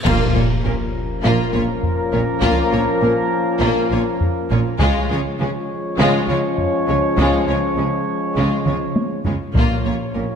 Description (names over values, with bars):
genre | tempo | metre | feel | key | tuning
cinematic, epic orchestral film score | 101 BPM | 4/4 | straight | Bb minor | A4 = 440 Hz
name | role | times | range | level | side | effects
rich symphonic violin section | melody | 0.0-10.2 s | F4 to Db5 | -26 LUFS | left 4 dB | none
clear trombone section | sustained chords | 0.0-10.4 s | F3 to Bb3 | -26 LUFS | right 2 dB | none
dark French horn section | sustained chords | 0.0-10.4 s | Db4 to F4 | -25 LUFS | left 8 dB | none
mellow trumpet section | stabs | 0.0-10.4 s | Bb4 to Db5 | -25 LUFS | right 2 dB | none
cymbal swell and impact | sound effects | 0.0-2.4 s | none | -31 LUFS | equal | none
clear symphonic violin section | second line | 0.1-10.2 s | Ab3 to F4 | -29 LUFS | left 3 dB | none
rich symphonic viola section | accompaniment | 0.1-10.2 s | Ab3 to Bb3 | -26 LUFS | equal | none
clear symphonic double bass section | bass | 0.1-10.2 s | Bb1 to Db2 | -25 LUFS | right 3 dB | none
rich symphonic cello section | bass | 0.1-10.2 s | Bb2 to Db3 | -24 LUFS | right 2 dB | none
taiko ensemble | drums | 0.1-10.1 s | none | -22 LUFS | equal | none
clash cymbals and concert bass drum | percussion | 0.1-1.2 s | none | -26 LUFS | equal | none
timpani | percussion | 0.1-0.9, 9.5-10.4 s | Bb2 | -25 LUFS | left 1 dB | none
room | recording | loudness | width
moderate scoring stage reverb, RT60 1.9 s | dark, warm production | -16 LUFS | side -7 dB against mid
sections
0.1-10.4 A section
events
band accent 0.1-0.6; impact 0.1-2.4; drum fill 8.7-9.5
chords
0.1 Bbm; 4.8 Db; 9.5 Bbm